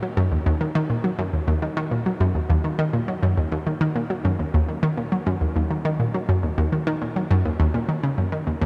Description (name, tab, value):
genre	ambient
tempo	103 BPM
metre	4/4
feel	straight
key	Eb minor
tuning	A4 = 440 Hz
part	analog pluck	solo	0.0-8.7 s	Eb2 to Gb3	-23 LUFS	equal	chorus, tape echo
room	wet huge ambient reverb, RT60 8.0 s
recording	dark, warm production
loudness	-23 LUFS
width	mono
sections	0.0-8.7 A section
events	none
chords	none